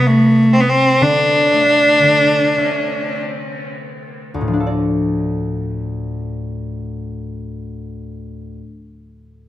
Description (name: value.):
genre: celtic folk, Celtic slow air.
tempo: 28-44 BPM (dotted quarters).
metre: 6/8.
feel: rubato.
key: D minor.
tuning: A4 = 440 Hz.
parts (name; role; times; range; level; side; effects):
clear cello; melody; 0.0-3.2 s; A3 to D4; -13 LUFS; equal; tape echo.
concert harp; accompaniment; 0.0-8.9 s; D2 to D5; -21 LUFS; left 2 dB; none.
room: light reverb.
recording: close, detailed microphones.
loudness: -13 LUFS.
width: side -14 dB against mid.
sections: 0.0-4.5 A section; 4.5-8.5 B section.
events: slowing down 0.0-4.5.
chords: 0.0 C5; 1.0 D5; 4.5 Dm.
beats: | 0.99 2.57 | 4.49 6.54.